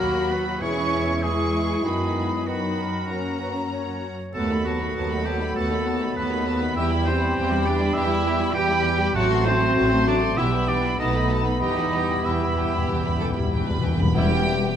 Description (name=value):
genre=quick classical-period movement for symphony orchestra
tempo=98 BPM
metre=4/4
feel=rubato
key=B major, E minor from 4.4 s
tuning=A4 = 441 Hz
part: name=clear studio violin section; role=melody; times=0.0-14.7 s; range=G5 to C#6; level=-33 LUFS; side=equal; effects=none
part: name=clear clarinet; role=second line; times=0.0-14.7 s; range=F#4 to C#5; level=-33 LUFS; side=left 2 dB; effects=none
part: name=clear oboe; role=second line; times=0.0-13.5 s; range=F#4 to G5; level=-28 LUFS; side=equal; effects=none
part: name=mellow flute section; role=second line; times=0.0-14.7 s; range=E5 to C#6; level=-33 LUFS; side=right 1 dB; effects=none
part: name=warm studio violin section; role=second line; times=0.0-14.7 s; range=D#4 to B4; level=-34 LUFS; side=left 5 dB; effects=none
part: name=mellow bassoon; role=accompaniment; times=0.0-14.7 s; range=D#3 to B3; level=-32 LUFS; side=right 2 dB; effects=none
part: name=warm symphonic viola section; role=accompaniment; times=0.0-14.4 s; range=E3 to F#4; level=-31 LUFS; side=equal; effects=none
part: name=mellow French horn section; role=sustained chords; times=0.0-14.7 s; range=F#3 to F#4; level=-30 LUFS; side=left 4 dB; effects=none
part: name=rich chamber cello section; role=bass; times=0.0-14.7 s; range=E2 to G4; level=-30 LUFS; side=right 2 dB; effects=none
part: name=rich chamber double bass section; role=bass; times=0.0-14.7 s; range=E1 to F#2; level=-27 LUFS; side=right 3 dB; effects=none
part: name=timpani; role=percussion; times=0.0-1.5, 10.4-14.8 s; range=E2 to B2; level=-26 LUFS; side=left 2 dB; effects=none
room=moderate scoring stage reverb, RT60 2.1 s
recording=none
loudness=-20 LUFS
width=side -9 dB against mid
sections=0.0-14.1 A section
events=timpani fill 11.6-14.1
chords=0.0 B; 0.6 C#m/E; 1.8 B/F#; 3.1 F#; 4.4 B7/D#; 6.8 Em; 9.2 F#dim/A; 10.4 Em/B; 11.0 B7; 11.6 Em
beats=0.01 0.61 1.23 | 1.85 2.48 3.11 3.73 | 4.35 4.96 5.57 6.17 | 6.77 7.37 7.96 8.55 | 9.16 9.77 10.38 10.99 | 11.62 12.26 12.89 13.52 | 14.15